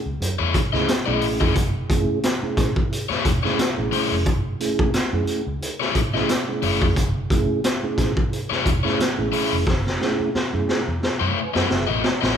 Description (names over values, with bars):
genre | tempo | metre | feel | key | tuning
funk | 89 BPM | 4/4 | swing 56% on 16ths | F# dorian | A4 = 443 Hz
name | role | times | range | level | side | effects
vintage muted fingered electric bass | bass | 0.1-12.3 s | E1 to F#2 | -27 LUFS | equal | none
mellow tonewheel organ | stabs | 0.2-12.4 s | G#3 to G#5 | -26 LUFS | right 3 dB | chorus vibrato, fast rotary speaker
raw garage drum kit | drums | 0.2-12.4 s | hi-hat, kick drum, snare drum | -22 LUFS | equal | none
crunchy overdriven guitar | accompaniment | 0.4-12.4 s | A3 to D#5 | -24 LUFS | left 7 dB | none
room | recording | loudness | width
moderate large studio reverb, RT60 1.3 s | band playing live in one room | -19 LUFS | side -8 dB against mid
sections
0.0-12.4 A section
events
drum fill 9.7-12.4; tonewheel organ fill 11.4-12.4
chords
0.0 F#m9